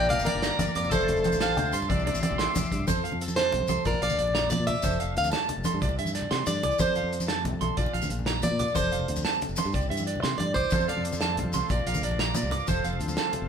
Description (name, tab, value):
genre	highlife guitar band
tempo	122 BPM (dotted quarters)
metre	12/8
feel	straight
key	F major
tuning	A4 = 441 Hz
part	picked plugged-in swing-style acoustic guitar	melody	0.0-11.0 s	A4 to A5	-28 LUFS	equal	none
part	breathy trumpet	second line	0.0-1.8 s	A3 to D4	-40 LUFS	left 5 dB	none
part	nylon-string guitar	accompaniment	0.0-13.5 s	F2 to A4	-38 LUFS	left 5 dB	none
part	overdriven combo organ	sustained chords	0.0-2.9, 10.7-13.5 s	F4 to D6	-36 LUFS	left 1 dB	none
part	electric guitar at the edge of break-up	arpeggios	0.0-13.3 s	C5 to D6	-31 LUFS	right 6 dB	none
part	fingered electric bass	bass	0.0-13.5 s	F1 to C3	-31 LUFS	equal	none
part	maracas	percussion	0.0-13.2 s	none	-39 LUFS	left 3 dB	none
part	warm soul drum kit	drums	0.1-13.4 s	hi-hat, kick drum, snare drum	-32 LUFS	equal	none
part	congas	percussion	0.1-13.4 s	none	-33 LUFS	equal	none
room	moderate stone room reverb, RT60 1.0 s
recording	band playing live in one room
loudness	-24 LUFS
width	side -7 dB against mid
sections	0.0-2.9 A section; 2.9-13.5 B section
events	steel-string acoustic guitar solo 2.9-13.5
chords	0.0 Bb; 0.9 F; 1.9 Cadd9; 2.9 F; 3.9 Bb; 4.8 F; 5.8 Cadd9; 6.8 F; 7.8 Bb; 8.8 F; 9.7 Cadd9; 10.7 F; 11.7 Bb; 12.7 F